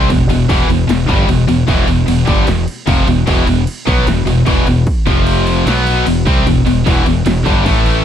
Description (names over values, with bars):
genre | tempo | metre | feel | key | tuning
heavy metal | 151 BPM | 4/4 | straight | E phrygian | A4 = 440 Hz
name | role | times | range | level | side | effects
biting overdriven guitar | riff | 0.0-8.0 s | E2 to C4 | -19 LUFS | right 1 dB | none
high-gain distorted guitar | riff | 0.0-8.0 s | E2 to C4 | -16 LUFS | left 9 dB | distortion
scooped high-gain guitar | riff | 0.0-8.0 s | E2 to C4 | -18 LUFS | right 10 dB | distortion
growling fingered electric bass | bass | 0.0-8.0 s | E1 to C2 | -16 LUFS | right 1 dB | overdrive
techno drum kit | drums | 0.1-7.9 s | crash cymbal, kick drum, snare drum | -17 LUFS | right 1 dB | overdrive
room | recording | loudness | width
little or no reverb | dark, warm production | -10 LUFS | side -9 dB against mid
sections
0.0-8.0 A section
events
half time 0.0-8.0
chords
0.0 Em; 5.1 F5; 5.7 B5; 6.1 Em; 7.7 A5